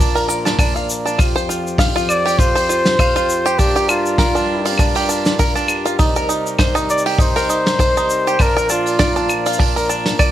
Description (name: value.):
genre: folktronica.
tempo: 100 BPM.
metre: 4/4.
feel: swing 56% on 16ths.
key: unclear.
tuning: A4 = 440 Hz.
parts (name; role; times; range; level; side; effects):
pedal harmonium; sustained chords; 0.0-10.3 s; F2 to C5; -23 LUFS; left 1 dB; none.
bluegrass banjo; arpeggios; 0.0-10.3 s; D4 to F5; -20 LUFS; right 2 dB; digital delay.
vintage brush drum kit; drums; 0.0-10.3 s; claves, hi-hat, shaker, snare drum; -22 LUFS; equal; none.
kick drum; drums; 0.6-10.3 s; none; -17 LUFS; equal; none.
warm flugelhorn; melody; 2.1-9.3 s; F4 to D5; -19 LUFS; left 1 dB; digital delay.
room: light reverb, small room reverb.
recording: none.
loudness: -14 LUFS.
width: side -12 dB against mid.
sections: 0.0-10.3 A section.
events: none.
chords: 0.0 Bb; 1.2 Fsus2; 3.6 Gm7; 6.0 Cm7; 8.4 Bb.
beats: 0.59 | 1.19 1.79 2.39 2.99 | 3.59 4.19 4.79 5.39 | 5.99 6.59 7.19 7.79 | 8.39 8.99 9.59 10.19.